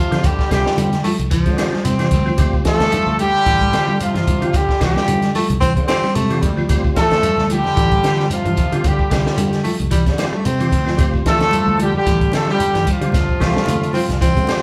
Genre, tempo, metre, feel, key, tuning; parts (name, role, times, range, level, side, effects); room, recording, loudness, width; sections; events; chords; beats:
afrobeat; 112 BPM; 4/4; swing 55% on 16ths; D minor; A4 = 440 Hz
warm horn section; melody; 0.0-14.6 s; F3 to A4; -21 LUFS; equal
trombone with metal mute; second line; 0.0-14.6 s; C3 to F3; -31 LUFS; equal
semi-hollow electric guitar; arpeggios; 0.0-14.5 s; D3 to A3; -25 LUFS; equal
percussive tonewheel organ; accompaniment; 0.1-14.6 s; G3 to F4; -30 LUFS; equal; slow rotary speaker, chorus vibrato
fingered electric bass; bass; 0.1-14.6 s; A1 to D3; -25 LUFS; equal
compact cocktail drum kit; drums; 0.1-14.6 s; hi-hat, kick drum, snare drum; -23 LUFS; equal
shekere; percussion; 0.1-14.6 s; -32 LUFS; equal
congas; percussion; 0.2-14.6 s; -28 LUFS; equal
warm baritone saxophone; second line; 1.0-14.6 s; F3 to C4; -25 LUFS; equal
wet large studio reverb, RT60 1.0 s; band playing live in one room; -17 LUFS; mono
0.0-14.6 A section
0.0 Dm11
| 0.24 0.78 1.31 1.85 | 2.39 2.93 3.46 4.00 | 4.54 5.08 5.62 6.15 | 6.69 7.23 7.76 8.30 | 8.84 9.38 9.91 10.45 | 10.99 11.53 12.06 12.60 | 13.14 13.68 14.22